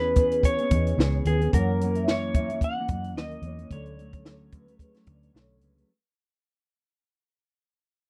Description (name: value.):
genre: indie pop, bedroom pop.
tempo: 110 BPM.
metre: 4/4.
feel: swing 55% on 16ths.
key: unclear.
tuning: A4 = 439 Hz.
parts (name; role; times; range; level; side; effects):
clean lap steel guitar; melody; 0.0-5.3 s; G#4 to F#5; -31 LUFS; equal; subtle chorus, slapback echo.
mellow electric guitar; accompaniment; 0.0-5.9 s; F#2 to G#4; -35 LUFS; equal; subtle chorus, warbly pitch drift.
vintage muted fingered electric bass; bass; 0.0-5.8 s; B1 to F#2; -30 LUFS; equal; none.
vibraphone with soft mallets; second line; 0.2-5.8 s; G#4 to F#5; -36 LUFS; equal; ensemble chorus, slapback echo.
compact cocktail drum kit; drums; 0.2-5.9 s; hi-hat, kick drum, snare drum; -26 LUFS; equal; none.
room: light reverb.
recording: dry, close 1970s-style studio recording.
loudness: -25 LUFS.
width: mono.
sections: 0.0-5.9 A section.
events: fade-out 0.0-5.9.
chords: 0.0 E6; 1.5 F#7; 3.7 Dmaj7.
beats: 0.43 0.97 | 1.52 2.07 2.61 3.16 | 3.70 4.25 4.79 5.34.